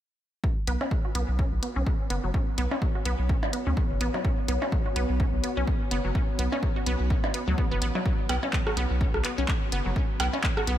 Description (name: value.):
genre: minimal techno.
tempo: 126 BPM.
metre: 4/4.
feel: swing 57% on 16ths.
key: B minor.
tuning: A4 = 442 Hz.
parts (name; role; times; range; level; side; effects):
electronic kick drum; drums; 0.4-10.5 s; none; -27 LUFS; equal; small room ambience.
deep dark ambient pad; texture; 1.8-10.8 s; B3 to D5; -35 LUFS; left 1 dB; chorus, built-in reverb, sidechain pumping.
resonant blip pluck; riff; 0.7-10.7 s; F#3 to F#4; -32 LUFS; equal; chorus, sidechain pumping, tape echo.
saturated sub bass; bass; 0.7-10.8 s; F#1 to D2; -28 LUFS; equal; sidechain pumping.
minimal click drum kit; drums; 0.7-10.8 s; handclaps, hi-hat; -33 LUFS; left 1 dB; small room ambience.
electronic percussion blips and rim click; percussion; 0.8-10.7 s; none; -34 LUFS; right 2 dB; overdrive, small room ambience, analog delay.
room: light reverb.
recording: none.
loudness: -24 LUFS.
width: side -12 dB against mid.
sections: 0.4-10.8 A section.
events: none.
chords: 0.4 B5.